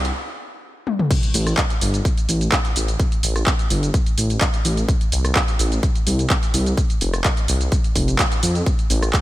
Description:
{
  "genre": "progressive house",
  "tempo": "127 BPM",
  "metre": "4/4",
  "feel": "straight",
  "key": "unclear",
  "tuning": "A4 = 440 Hz",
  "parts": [
    { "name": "dark detuned saw bass", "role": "bass", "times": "0.0-9.1 s", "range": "F1 to F2", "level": "-20 LUFS", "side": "equal", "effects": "sidechain pumping" },
    { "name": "pop drum kit", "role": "drums", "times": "0.0-9.2 s", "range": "crash cymbal, handclaps, hi-hat, rim click, shaker, toms", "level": "-22 LUFS", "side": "equal", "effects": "none" },
    { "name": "electronic kick drum", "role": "drums", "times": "1.1-9.2 s", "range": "none", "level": "-20 LUFS", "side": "equal", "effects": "high-pass filter on kick" }
  ],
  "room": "light reverb",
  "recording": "none",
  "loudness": "-17 LUFS",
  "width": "side -16 dB against mid",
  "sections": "0.0-1.1 A section; 1.1-9.2 B section",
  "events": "build-up 0.0-1.1; stop 0.2-1.1; drum fill 0.9; drop 1.1-9.2",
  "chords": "none"
}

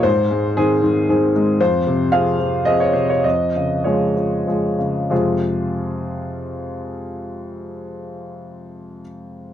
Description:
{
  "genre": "neoclassical minimalist piano",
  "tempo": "93-117 BPM",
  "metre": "3/4",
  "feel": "rubato",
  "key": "F minor",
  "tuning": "A4 = 440 Hz",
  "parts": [
    { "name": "warm grand piano", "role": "solo", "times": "0.0-9.5 s", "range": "F2 to F5", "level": "-18 LUFS", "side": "equal", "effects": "none" }
  ],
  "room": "light reverb",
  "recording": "dry, close 1970s-style studio recording",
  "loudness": "-16 LUFS",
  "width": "side -10 dB against mid",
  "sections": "0.0-5.1 A section; 5.1-8.9 B section",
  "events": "slowing down 0.8-5.1",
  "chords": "0.0 Ab; 1.6 Fm; 3.2 Db/F; 5.1 Fm"
}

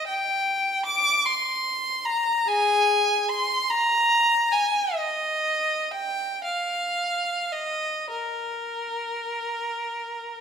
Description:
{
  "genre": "classical, free, expressive piece for unaccompanied violin",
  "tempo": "29-51 BPM (dotted quarters)",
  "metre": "6/8",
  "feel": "rubato",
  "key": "unclear",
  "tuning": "A4 = 440 Hz",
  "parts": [
    { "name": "clear violin", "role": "solo", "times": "0.0-10.4 s", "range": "Ab4 to D6", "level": "-22 LUFS", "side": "equal", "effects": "none" }
  ],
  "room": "wet recital hall reverb, RT60 1.4 s",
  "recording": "minimal, uncompressed stereo recording",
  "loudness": "-22 LUFS",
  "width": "side -7 dB against mid",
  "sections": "0.0-10.4 A section",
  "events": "none",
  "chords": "none"
}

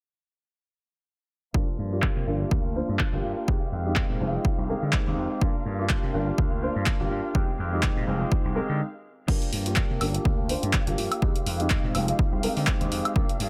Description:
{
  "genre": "filtered disco house",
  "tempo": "124 BPM",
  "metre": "4/4",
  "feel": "swing 56% on 16ths",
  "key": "unclear",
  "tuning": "A4 = 436 Hz",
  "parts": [
    { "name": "warm grand piano", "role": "accompaniment", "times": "1.5-13.3 s", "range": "Ab3 to C5", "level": "-33 LUFS", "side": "equal", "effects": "phaser, sidechain pumping, low-pass filter" },
    { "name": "warm studio violin section", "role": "sustained chords", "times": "1.5-13.5 s", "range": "F5", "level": "-41 LUFS", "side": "equal", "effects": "vintage 12-bit sampler grit, sidechain pumping, low-pass filter" },
    { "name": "direct-recorded clean electric guitar", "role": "riff", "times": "1.5-13.5 s", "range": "Eb3 to G4", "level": "-39 LUFS", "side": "equal", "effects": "sidechain pumping, low-pass filter" },
    { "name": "gritty slap bass", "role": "bass", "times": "1.5-13.5 s", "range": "F1 to D3", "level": "-32 LUFS", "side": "equal", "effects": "overdrive, sidechain pumping, low-pass filter" },
    { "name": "electronic kick drum", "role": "drums", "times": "1.5-13.3 s", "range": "none", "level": "-28 LUFS", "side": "equal", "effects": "overdrive" },
    { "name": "punchy analog drum machine", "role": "drums", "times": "2.0-13.5 s", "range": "crash cymbal, handclaps, hi-hat, woodblock", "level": "-33 LUFS", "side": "equal", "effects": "overdrive, low-pass filter on snare, sidechain pumping on cymbals, low-pass filter on cymbals, sidechain pumping on hats, low-pass filter on hats, sidechain pumping on perc, low-pass filter on perc" }
  ],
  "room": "digital ambience",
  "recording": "none",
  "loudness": "-26 LUFS",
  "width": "mono",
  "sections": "1.5-9.3 A section; 9.3-13.5 B section",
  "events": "filter sweep 1.5-9.3, 9.3-13.5; stop 8.8-9.3",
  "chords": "1.5 Gm7; 3.5 Fm9; 5.4 Gm7; 7.4 Fm9; 9.3 Gm7; 11.2 Fm9"
}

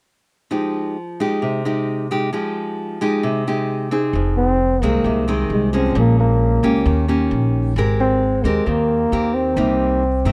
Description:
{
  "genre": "bossa nova",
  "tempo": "132 BPM",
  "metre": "4/4",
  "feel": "straight",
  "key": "F minor",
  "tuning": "A4 = 438 Hz",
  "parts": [
    { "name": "nylon-string guitar", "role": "accompaniment", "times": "0.5-10.3 s", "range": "F2 to Bb4", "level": "-23 LUFS", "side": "equal", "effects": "none" },
    { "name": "upright bass", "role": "bass", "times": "4.1-10.3 s", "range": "F1 to G2", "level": "-22 LUFS", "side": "equal", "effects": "none" },
    { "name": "breathy trombone", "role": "melody", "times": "4.4-10.3 s", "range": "Ab3 to C4", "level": "-21 LUFS", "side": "equal", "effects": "tape echo" }
  ],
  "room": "light reverb",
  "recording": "dry, close 1970s-style studio recording",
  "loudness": "-19 LUFS",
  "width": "mono",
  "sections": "0.5-4.1 A section; 4.1-10.3 B section",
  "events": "none",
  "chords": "0.5 Fm9; 4.1 Fm7; 5.9 Bbm7; 6.9 Eb7; 7.8 Abmaj9; 9.6 Cm7"
}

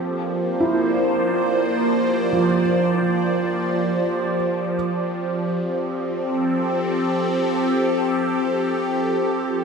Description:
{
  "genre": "ambient",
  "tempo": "free time",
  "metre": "none",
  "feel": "none",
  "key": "F major",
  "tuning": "A4 = 441 Hz",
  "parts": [
    { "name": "evolving wavetable pad", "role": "sustained chords", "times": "0.0-9.6 s", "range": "F3 to D5", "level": "-20 LUFS", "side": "equal", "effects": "phaser, built-in reverb, shimmer reverb" },
    { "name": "hand-pumped harmonium", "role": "drone", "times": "0.0-9.6 s", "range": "F3 to G4", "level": "-31 LUFS", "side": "left 1 dB", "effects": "stereo widening" },
    { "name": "felt-muted upright piano", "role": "arpeggios", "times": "0.6-4.8 s", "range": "F3 to E4", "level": "-24 LUFS", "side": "right 3 dB", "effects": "tape echo, shimmer reverb" }
  ],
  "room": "wet plate reverb, RT60 3.0 s",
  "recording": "echo-heavy mix",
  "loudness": "-19 LUFS",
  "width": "side -5 dB against mid",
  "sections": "0.0-9.6 A section",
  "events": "fade-in on harmonium 0.0-9.6",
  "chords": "0.0 Bbadd9/F; 4.7 Fadd9"
}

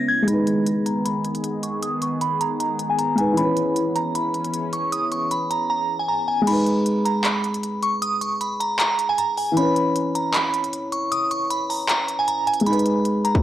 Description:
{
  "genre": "hip hop, trap",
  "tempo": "155 BPM",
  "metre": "4/4",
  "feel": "half-time",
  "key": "G# minor",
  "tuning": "A4 = 440 Hz",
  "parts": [
    { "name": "glassy synth bell", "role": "melody", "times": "0.0-13.4 s", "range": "G#5 to G#6", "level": "-23 LUFS", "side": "right 1 dB", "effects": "chorus, phaser, low-pass filter" },
    { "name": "dark concert grand piano", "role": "accompaniment", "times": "0.0-13.4 s", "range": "E3 to B4", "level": "-24 LUFS", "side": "equal", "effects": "low-pass filter" },
    { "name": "sweeping resonant pad", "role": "sustained chords", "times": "0.0-6.4 s", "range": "C#3 to G#4", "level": "-28 LUFS", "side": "equal", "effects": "chorus, low-pass filter" },
    { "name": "trap drum kit", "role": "drums", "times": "0.3-13.4 s", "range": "crash cymbal, handclaps, hi-hat, kick drum", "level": "-26 LUFS", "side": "left 1 dB", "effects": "none" },
    { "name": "distorted 808-style bass", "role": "bass", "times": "12.7-13.4 s", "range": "G#1", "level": "-56 LUFS", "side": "equal", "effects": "none" }
  ],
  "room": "little or no reverb",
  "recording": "dry, gritty hardware recording, cassette tape",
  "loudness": "-20 LUFS",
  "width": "side -12 dB against mid",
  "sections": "0.3-6.5 A section; 6.5-13.4 B section",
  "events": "break 0.0; filter sweep 0.3-6.5; kick muted 6.5-12.7",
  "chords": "0.3 G#m; 3.4 C#m7; 6.5 G#m; 9.6 C#m7; 12.7 G#m"
}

